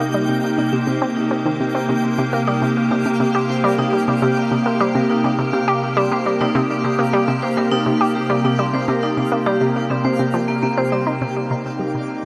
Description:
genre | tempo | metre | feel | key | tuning
ambient, sequencer-driven space music | 103 BPM | 4/4 | straight | C minor | A4 = 439 Hz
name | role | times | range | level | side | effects
evolving wavetable pad | sustained chords | 0.0-12.2 s | C3 to G4 | -23 LUFS | equal | chorus, built-in reverb
vibraphone with medium hard mallets | arpeggios | 0.0-11.1 s | Bb3 to C5 | -28 LUFS | equal | delay
analog pluck | riff | 0.0-12.1 s | C3 to G4 | -23 LUFS | equal | chorus, delay
twinkling granular texture | texture | 0.0-12.2 s | G4 to G5 | -30 LUFS | equal | built-in reverb
room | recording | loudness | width
wet huge ambient reverb, RT60 7.4 s | none | -19 LUFS | mono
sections
0.0-11.2 A section; 11.2-12.2 A section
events
fade-in on vibraphone 0.0-11.2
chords
0.0 Cm7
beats
0.14 0.73 1.31 | 1.89 2.47 3.06 3.64 | 4.22 4.80 5.39 5.97 | 6.55 7.13 7.72 8.30 | 8.88 9.46 10.05 10.63 | 11.21 11.79

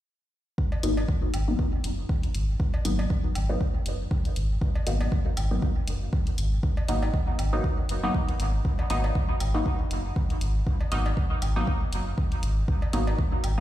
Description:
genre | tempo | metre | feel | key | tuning
dub techno | 119 BPM | 4/4 | swing 56% on 16ths | G# minor | A4 = 440 Hz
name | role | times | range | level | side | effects
electronic kick drum | drums | 0.6-13.3 s | none | -25 LUFS | equal | none
cowbell and woodblock | percussion | 0.7-13.6 s | none | -42 LUFS | right 1 dB | sidechain pumping on perc, dub echo
filtered dub chord stab | stabs | 0.8-13.6 s | F#3 to D#4 | -31 LUFS | left 1 dB | chorus, phaser, sidechain pumping, dub echo
round analog bass | bass | 0.8-13.6 s | F#1 to G#1 | -26 LUFS | equal | sidechain pumping
electronic hi-hat | drums | 0.8-13.6 s | none | -38 LUFS | left 1 dB | none
room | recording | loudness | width
light reverb | played on a big sound system in a bare room, stone room reverb | -24 LUFS | side -13 dB against mid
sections
0.6-13.6 A section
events
none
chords
0.6 G#m7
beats
| 0.58 1.09 1.59 2.09 | 2.60 3.10 3.61 4.11 | 4.62 5.12 5.62 6.13 | 6.63 7.14 7.64 8.14 | 8.65 9.15 9.66 10.16 | 10.67 11.17 11.67 12.18 | 12.68 13.19

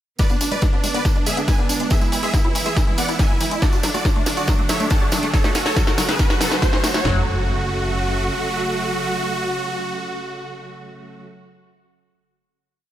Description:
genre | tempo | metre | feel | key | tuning
uplifting trance | 140 BPM | 4/4 | straight | F# minor | A4 = 438 Hz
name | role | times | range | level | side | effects
supersaw chords | melody | 0.2-11.2 s | A3 to A5 | -24 LUFS | right 1 dB | sidechain pumping, tape echo
warm studio string section | sustained chords | 0.2-11.2 s | C#3 to B3 | -29 LUFS | right 2 dB | sidechain pumping
liquid acid bass | arpeggios | 0.2-7.2 s | E3 to F#4 | -28 LUFS | left 2 dB | phaser, lush chorus, sidechain pumping, dub echo
techno drum kit | drums | 0.2-7.2 s | kick drum, snare drum, toms | -19 LUFS | equal | none
techno drum kit | drums | 0.2-7.0 s | hi-hat, snare drum | -25 LUFS | left 1 dB | none
tambourine | percussion | 0.2-7.0 s | none | -30 LUFS | right 4 dB | none
riser and impact | sound effects | 2.6-11.5 s | none | -30 LUFS | equal | none
plucky analog bass | bass | 0.3-8.3 s | F#1 to F#2 | -30 LUFS | equal | none
room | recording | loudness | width
light reverb | none | -17 LUFS | side -12 dB against mid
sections
0.2-7.1 build; 7.1-10.5 final chord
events
build-up 0.2-7.1; drum fill 0.2-7.1; filter sweep on acid bass 0.2-7.1; riser 2.6-7.1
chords
0.2 G#dim/F#; 1.9 E/F#; 3.6 D/F#; 5.3 F#m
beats
| 0.19 0.62 1.05 1.48 | 1.91 2.34 2.77 3.19 | 3.62 4.05 4.48 4.91 | 5.34 5.76 6.19 6.62 | 7.05 7.48 7.91 8.34 | 8.77 9.19 9.62 10.05

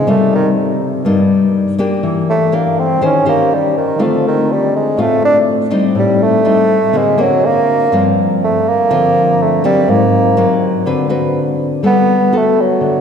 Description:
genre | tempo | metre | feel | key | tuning
bossa nova | 122 BPM | 4/4 | straight | unclear | A4 = 440 Hz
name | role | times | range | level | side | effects
mellow bassoon | melody | 0.0-13.0 s | Eb3 to D4 | -13 LUFS | right 2 dB | none
nylon-string guitar | accompaniment | 0.0-13.0 s | G2 to C5 | -14 LUFS | left 2 dB | none
room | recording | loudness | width
wet church reverb, RT60 3.0 s | recorded in a church or concert hall | -11 LUFS | side -7 dB against mid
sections
0.0-11.8 A section; 11.8-13.0 B section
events
bassoon solo 0.0-11.8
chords
0.1 Cm7; 2.0 Em7b5; 3.0 Eb6; 4.0 Dm7; 6.0 Am7b5; 6.9 Daug7; 7.9 Gm7; 9.9 Ab9; 10.9 D6; 11.8 Gmaj9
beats
| 0.07 0.56 1.05 1.54 | 2.04 2.53 3.02 3.51 | 4.00 4.49 4.98 5.47 | 5.96 6.45 6.94 7.43 | 7.92 8.41 8.89 9.38 | 9.87 10.36 10.85 11.34 | 11.83 12.32 12.81

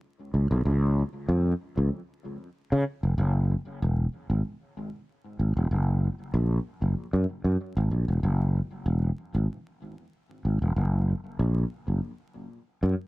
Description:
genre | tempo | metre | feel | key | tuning
funk | 95 BPM | 4/4 | straight | unclear | A4 = 442 Hz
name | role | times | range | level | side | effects
sustaining fretless electric bass | solo | 0.3-12.9 s | Fb1 to Db3 | -24 LUFS | equal | none
room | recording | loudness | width
light reverb | dry, close 1970s-style studio recording, vinyl crackle | -24 LUFS | side -21 dB against mid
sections
0.0-8.2 A section; 8.2-13.1 B section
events
none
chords
none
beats
0.02 | 0.66 1.29 1.92 2.55 | 3.18 3.81 4.45 5.08 | 5.71 6.34 6.97 7.60 | 8.23 8.86 9.50 10.13 | 10.76 11.39 12.02 12.65

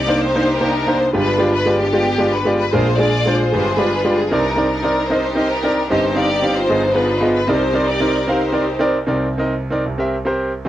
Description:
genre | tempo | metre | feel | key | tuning
gospel | 151 BPM | 4/4 | swing 63% on 8ths | C minor | A4 = 444 Hz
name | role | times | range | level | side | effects
clear studio string section | melody | 0.0-9.0 s | B3 to D5 | -19 LUFS | left 1 dB | cassette tape, analog delay
clear concert grand piano | accompaniment | 0.0-10.7 s | G1 to F5 | -17 LUFS | right 1 dB | none
room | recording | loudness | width
moderate booth ambience, RT60 0.2 s | home recording on cassette | -15 LUFS | side -13 dB against mid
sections
0.0-9.1 A section; 9.1-10.7 B section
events
none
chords
0.0 Cm9; 1.1 G7b9; 2.7 Bb7; 3.5 G7b9; 4.3 Cm9; 5.9 Cm/G; 6.7 G7b9b13; 7.5 Cm9; 9.9 C7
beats
0.35 0.75 | 1.15 1.54 1.94 2.33 | 2.73 3.13 3.52 3.92 | 4.32 4.71 5.11 5.51 | 5.90 6.30 6.69 7.09 | 7.49 7.88 8.28 8.67 | 9.07 9.47 9.86 10.26 | 10.66

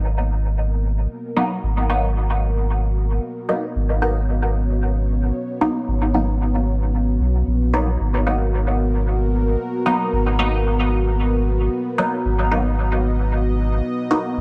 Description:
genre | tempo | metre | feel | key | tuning
dub techno | 113 BPM | 4/4 | straight | G# minor | A4 = 439 Hz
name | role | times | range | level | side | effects
dark analog pad | sustained chords | 0.3-14.4 s | B3 to D#5 | -28 LUFS | equal | chorus
warm sub bass | bass | 0.0-14.4 s | G#1 to B1 | -22 LUFS | equal | tube saturation
filtered dub chord stab | stabs | 1.4-14.3 s | F#3 to D#4 | -26 LUFS | equal | phaser, dub echo
room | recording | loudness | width
light reverb | echo-heavy mix | -20 LUFS | mono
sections
0.0-14.4 A section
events
none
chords
0.0 G#m9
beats
0.04 0.57 1.10 | 1.63 2.16 2.69 3.22 | 3.75 4.28 4.82 5.35 | 5.88 6.41 6.94 7.47 | 8.00 8.53 9.06 9.59 | 10.12 10.66 11.19 11.72 | 12.25 12.78 13.31 13.84 | 14.37

